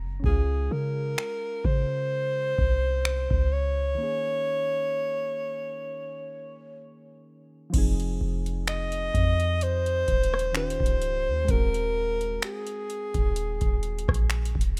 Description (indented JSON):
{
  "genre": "contemporary R&B",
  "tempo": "64 BPM",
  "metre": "4/4",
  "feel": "swing 54% on 16ths",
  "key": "F minor",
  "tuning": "A4 = 440 Hz",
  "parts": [
    { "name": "soft electric-piano-like synth keys", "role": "accompaniment", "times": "0.0-14.8 s", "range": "Eb3 to Bb5", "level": "-41 LUFS", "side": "equal", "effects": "chorus" },
    { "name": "warm 808-style bass", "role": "bass", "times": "0.0-14.8 s", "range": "Db1 to Db3", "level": "-30 LUFS", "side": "equal", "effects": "none" },
    { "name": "booming analog drum machine", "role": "drums", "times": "0.2-14.8 s", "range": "crash cymbal, finger snaps, hi-hat, kick drum, rim click", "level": "-28 LUFS", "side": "equal", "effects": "none" },
    { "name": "breathy alto saxophone", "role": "melody", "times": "0.3-14.7 s", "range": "Ab4 to Eb5", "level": "-31 LUFS", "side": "equal", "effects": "none" }
  ],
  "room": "little or no reverb",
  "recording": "rough home demo mix",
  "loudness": "-27 LUFS",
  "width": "mono",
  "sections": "0.0-7.7 A section; 7.7-14.8 B section",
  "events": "synth keys fill 0.0; break 4.0-7.7",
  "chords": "0.2 Dbmaj7; 4.0 Eb7sus4; 7.7 Fm7; 10.6 Eb9; 11.5 Ab9/Eb",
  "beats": "| 0.24 1.18 2.11 3.05 | 3.99 4.92 5.86 6.80 | 7.74 8.68 9.61 10.55 | 11.49 12.43 13.36 14.30"
}